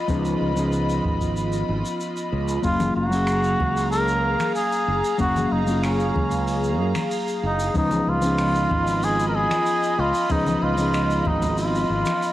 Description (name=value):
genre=sunset chillout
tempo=94 BPM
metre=4/4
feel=straight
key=F# major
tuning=A4 = 440 Hz
part: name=mellow electric guitar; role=accompaniment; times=0.0-12.3 s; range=E#3 to E#5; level=-26 LUFS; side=moving between left 3 dB and right 3 dB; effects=auto-pan, cassette tape
part: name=airy breathy pad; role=sustained chords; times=0.0-12.3 s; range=E#4 to B5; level=-28 LUFS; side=left 1 dB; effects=chorus, cassette tape
part: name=fretless electric bass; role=bass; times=0.1-12.0 s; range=F#1 to F#2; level=-26 LUFS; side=equal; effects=lush chorus
part: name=electronic kick drum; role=drums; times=0.1-11.6 s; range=none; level=-27 LUFS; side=equal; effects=overdrive, cassette tape
part: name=jazz brush drum kit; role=drums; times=0.1-12.3 s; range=finger snaps, hi-hat, shaker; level=-36 LUFS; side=equal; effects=cassette tape
part: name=trumpet with cup mute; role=melody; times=2.6-12.3 s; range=C#4 to A#4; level=-24 LUFS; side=equal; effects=vintage 12-bit sampler grit, cassette tape, analog delay
part: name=congas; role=percussion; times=2.8-12.2 s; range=none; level=-30 LUFS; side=left 2 dB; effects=none
room=light reverb, small room reverb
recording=home recording on cassette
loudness=-20 LUFS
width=side -14 dB against mid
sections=0.0-12.3 A section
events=none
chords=0.0 C#9; 2.6 F#maj9; 7.8 C#9